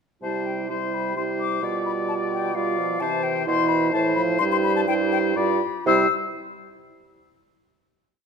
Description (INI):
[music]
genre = quick classical-period movement for wind quintet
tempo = 128 BPM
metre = 3/4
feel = uneven beats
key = C major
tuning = A4 = 436 Hz
[part]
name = concert flute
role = melody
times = 0.2-6.1 s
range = F5 to E6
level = -26 LUFS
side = left 9 dB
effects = none
[part]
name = warm oboe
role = second line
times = 0.2-6.1 s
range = C5 to D5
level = -28 LUFS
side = left 4 dB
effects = none
[part]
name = clear French horn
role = accompaniment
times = 0.2-6.1 s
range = E3 to G3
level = -29 LUFS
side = left 1 dB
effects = none
[part]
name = mellow clarinet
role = accompaniment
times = 0.2-6.1 s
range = E4 to F4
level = -27 LUFS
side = right 12 dB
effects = none
[part]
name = warm bassoon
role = bass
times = 0.2-6.1 s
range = G2 to C3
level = -29 LUFS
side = right 4 dB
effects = none
[sound]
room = moderate concert hall reverb, RT60 2.0 s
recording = none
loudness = -20 LUFS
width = side -5 dB against mid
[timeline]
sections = 0.2-5.9 A section; 5.9-7.3 final chord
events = slowing down 2.3-5.9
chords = 0.2 C; 1.6 G7/B; 3.0 C; 3.9 Am; 4.4 C/G; 5.4 G7; 5.9 C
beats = | 0.23 0.70 1.16 | 1.62 2.08 2.55 | 3.01 3.47 3.93 | 4.40 4.88 5.36 | 5.86